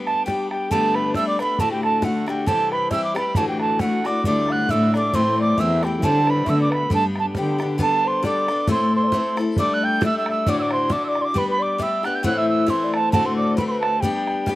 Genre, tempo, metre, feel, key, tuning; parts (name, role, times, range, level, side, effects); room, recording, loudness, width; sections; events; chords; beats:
celtic folk, Celtic polka; 135 BPM; 2/4; swing 56% on 8ths; G major; A4 = 440 Hz
picked steel-string acoustic guitar; accompaniment; 0.0-14.6 s; D2 to A4; -24 LUFS; left 3 dB
reedy wooden whistle; melody; 0.1-14.6 s; F#5 to G6; -22 LUFS; right 2 dB; slapback echo
bodhran; percussion; 0.1-14.6 s; -26 LUFS; right 1 dB
baroque flute; second line; 0.3-14.6 s; F#4 to G5; -27 LUFS; left 2 dB; slapback echo
dark cello; bass; 4.3-7.7 s; D2 to D3; -22 LUFS; equal
little or no reverb; recorded outdoors, with no room sound; -18 LUFS; side -16 dB against mid
0.7-7.8 A section; 7.8-14.6 B section
0.0 G; 0.7 Gadd9; 1.6 D; 2.5 C; 3.4 Dadd9; 4.3 Dsus4; 5.1 Am; 6.0 D7sus4; 6.5 D6; 6.9 G; 7.8 Gadd9; 8.7 Am; 9.6 Gsus2; 10.5 Dadd9; 11.4 G; 12.2 Am; 13.1 D7; 14.0 G
0.27 | 0.71 1.16 | 1.60 2.04 | 2.48 2.93 | 3.37 3.81 | 4.25 4.70 | 5.14 5.58 | 6.03 6.47 | 6.91 7.36 | 7.80 8.24 | 8.69 9.13 | 9.58 10.02 | 10.47 10.91 | 11.36 11.80 | 12.25 12.69 | 13.14 13.58 | 14.03 14.47